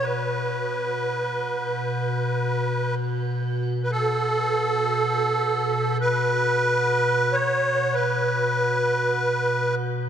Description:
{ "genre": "caucasian folk, Caucasian lament", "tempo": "free time", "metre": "none", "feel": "none", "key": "unclear", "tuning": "A4 = 435 Hz", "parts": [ { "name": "musette accordion", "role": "melody", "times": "0.0-9.8 s", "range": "A4 to C#5", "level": "-22 LUFS", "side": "right 1 dB", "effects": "none" }, { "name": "icy glass pad", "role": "drone", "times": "0.0-10.1 s", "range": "B2", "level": "-27 LUFS", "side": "equal", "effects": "chorus, built-in reverb" } ], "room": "wet cathedral reverb, RT60 4.4 s", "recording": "dark, warm production", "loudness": "-21 LUFS", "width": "side -9 dB against mid", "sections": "0.0-10.1 A section", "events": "none", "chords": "none" }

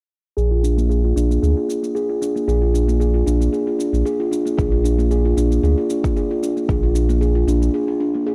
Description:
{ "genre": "organic downtempo", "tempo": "114 BPM", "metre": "4/4", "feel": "swing 54% on 16ths", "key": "unclear", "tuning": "A4 = 439 Hz", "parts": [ { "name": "steel tongue drum", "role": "arpeggios", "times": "0.4-8.3 s", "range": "Bb3 to Ab4", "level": "-22 LUFS", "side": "equal", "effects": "low-pass filter, tape echo" }, { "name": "warm sub bass", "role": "bass", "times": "0.4-7.7 s", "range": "Bb1 to D2", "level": "-20 LUFS", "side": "equal", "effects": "sidechain pumping" }, { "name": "shaker", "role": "drums", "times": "0.4-7.7 s", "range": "none", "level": "-42 LUFS", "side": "equal", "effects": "studio reverb" }, { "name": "electronic kick drum", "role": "drums", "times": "4.6-6.8 s", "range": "none", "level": "-24 LUFS", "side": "equal", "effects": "studio reverb" } ], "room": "light reverb", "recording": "worn, warbling old tape, cassette tape, warbly pitch drift", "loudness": "-19 LUFS", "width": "mono", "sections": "0.4-8.3 A section", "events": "filter sweep on sub bass 0.4-8.3; filter sweep on steel tongue drum 0.4-8.3; break 7.7-8.3", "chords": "0.4 Bb7" }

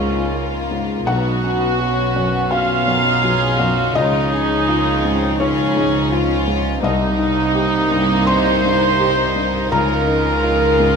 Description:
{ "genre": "cinematic", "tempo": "83 BPM", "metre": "4/4", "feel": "rubato", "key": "unclear", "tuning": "A4 = 439 Hz", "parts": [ { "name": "warm studio violin section", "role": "melody", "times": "0.0-11.0 s", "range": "Eb4 to Ab4", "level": "-26 LUFS", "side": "left 3 dB", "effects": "none" }, { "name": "clear cor anglais", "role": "second line", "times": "0.0-11.0 s", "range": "Db4 to C5", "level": "-23 LUFS", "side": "right 3 dB", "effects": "none" }, { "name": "warm studio violin section", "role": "second line", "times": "0.0-11.0 s", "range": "Ab3 to F4", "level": "-25 LUFS", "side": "left 2 dB", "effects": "none" }, { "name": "dark studio viola section", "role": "accompaniment", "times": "0.0-11.0 s", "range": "Db4 to F5", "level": "-22 LUFS", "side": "right 1 dB", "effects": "none" }, { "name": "felt-muted upright piano", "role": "accompaniment", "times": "0.0-11.0 s", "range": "B1 to C6", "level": "-22 LUFS", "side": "left 4 dB", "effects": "none" }, { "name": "mellow French horn section", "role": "sustained chords", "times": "0.0-11.0 s", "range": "F3 to F4", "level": "-25 LUFS", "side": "left 4 dB", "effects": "none" }, { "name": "rich studio cello section", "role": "bass", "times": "0.0-11.0 s", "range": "B2 to Db3", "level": "-25 LUFS", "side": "right 3 dB", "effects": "none" }, { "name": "warm symphonic double bass section", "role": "bass", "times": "0.0-11.0 s", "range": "B1 to Db2", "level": "-23 LUFS", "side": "right 3 dB", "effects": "none" } ], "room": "moderate recital hall reverb, RT60 1.6 s", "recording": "none", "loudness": "-15 LUFS", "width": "side -5 dB against mid", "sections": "0.0-11.0 A section", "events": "none", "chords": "0.0 Dbadd9; 1.1 Bsus2; 4.0 Dbadd9; 6.8 Cm7; 9.7 Dbadd9" }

